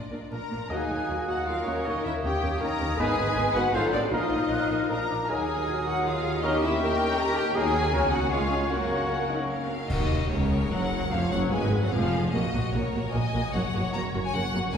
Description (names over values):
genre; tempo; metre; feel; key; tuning
classical, dramatic, fast romantic movement for symphony orchestra; 146-163 BPM; 3/4; straight; Eb minor, F# major from 7.6 s; A4 = 440 Hz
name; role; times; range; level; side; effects
bright symphonic violin section; melody; 0.0-14.8 s; Db4 to A#5; -36 LUFS; left 2 dB; none
clear symphonic violin section; second line; 0.1-14.8 s; F4 to Bb5; -31 LUFS; left 2 dB; none
rich symphonic viola section; accompaniment; 0.1-14.8 s; C#3 to Bb4; -34 LUFS; equal; none
clear symphonic double bass section; bass; 0.1-14.8 s; E#1 to Eb2; -31 LUFS; right 1 dB; none
rich symphonic cello section; bass; 0.1-14.8 s; C#2 to Cb5; -32 LUFS; right 1 dB; none
dark clarinet; second line; 0.3-9.7 s; Db4 to Bb4; -33 LUFS; left 2 dB; none
bright silver concert flute; second line; 0.7-9.7 s; C#6 to Gb6; -36 LUFS; left 2 dB; none
warm oboe; second line; 0.7-9.7 s; Bb4 to Eb5; -38 LUFS; right 1 dB; none
warm bassoon; accompaniment; 0.7-9.7 s; Eb3 to Bb3; -35 LUFS; right 1 dB; none
mellow French horn section; sustained chords; 0.7-9.9 s; Eb3 to Gb4; -36 LUFS; left 2 dB; none
mellow trumpet; stabs; 0.7-8.8 s; Bb4 to Eb5; -37 LUFS; equal; none
cymbal swell, clash cymbals and concert bass drum; percussion; 7.6-10.7 s; none; -34 LUFS; equal; none
room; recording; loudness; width
wet concert hall reverb, RT60 2.4 s; heard from further back in the room, vinyl crackle; -24 LUFS; side -7 dB against mid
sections
0.7-9.9 A section; 9.9-14.8 B section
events
band accent 9.9-10.3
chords
0.0 Bb; 0.7 Ebm; 1.9 Eb7; 3.0 Abm; 3.7 Adim7; 4.1 Bbsus4; 4.9 Bb; 5.3 Ebm; 6.4 Eb7; 7.6 D#m; 7.9 F#/C#; 8.3 C#; 8.7 F#; 11.1 C#7/E#; 12.3 F#/A#; 13.5 F#